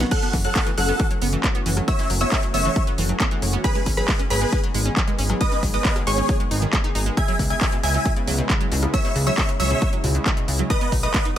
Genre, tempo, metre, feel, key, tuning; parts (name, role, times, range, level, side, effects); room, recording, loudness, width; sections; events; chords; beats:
uplifting trance; 136 BPM; 4/4; straight; F# dorian; A4 = 435 Hz
analog pluck; arpeggios; 0.0-11.3 s; B2 to D#4; -29 LUFS; right 3 dB; chorus, sidechain pumping, ping-pong delay
fat analog bass; bass; 0.0-11.1 s; F#1 to C#2; -23 LUFS; equal; sidechain pumping
techno drum kit; drums; 0.0-11.3 s; crash cymbal, handclaps, hi-hat, rim click, snare drum; -26 LUFS; equal; overdrive
big supersaw lead; melody; 0.1-11.3 s; G#4 to G#5; -26 LUFS; equal; phaser, sidechain pumping, ping-pong delay
analog pluck; second line; 0.1-11.3 s; B5 to G#6; -31 LUFS; equal; chorus, sidechain pumping, ping-pong delay
electronic kick drum; drums; 0.1-11.2 s; -22 LUFS; equal; overdrive
little or no reverb; -18 LUFS; side -11 dB against mid
0.0-11.4 A section
0.1 F#m7; 3.6 G#m; 7.2 C#m7; 10.7 B
| 0.11 0.56 1.00 1.44 | 1.88 2.32 2.76 3.20 | 3.64 4.08 4.53 4.97 | 5.41 5.85 6.29 6.73 | 7.17 7.61 8.05 8.50 | 8.94 9.38 9.82 10.26 | 10.70 11.14